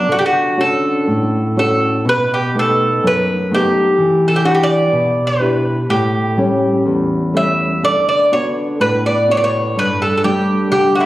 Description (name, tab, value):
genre	fado-style ballad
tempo	62 BPM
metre	2/4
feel	rubato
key	D major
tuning	A4 = 438 Hz
part	Irish bouzouki	melody	0.0-11.1 s	D4 to E5	-15 LUFS	equal	none
part	nylon-string guitar	accompaniment	0.0-11.1 s	E2 to G4	-16 LUFS	equal	none
room	wet recital hall reverb, RT60 1.7 s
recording	recorded on a phone in the room, club reverb, compression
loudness	-13 LUFS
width	side -16 dB against mid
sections	0.1-11.1 A section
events	none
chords	0.1 Dmaj7; 2.1 B7; 4.0 Em7; 5.9 A7; 7.8 D6; 9.8 Gsus2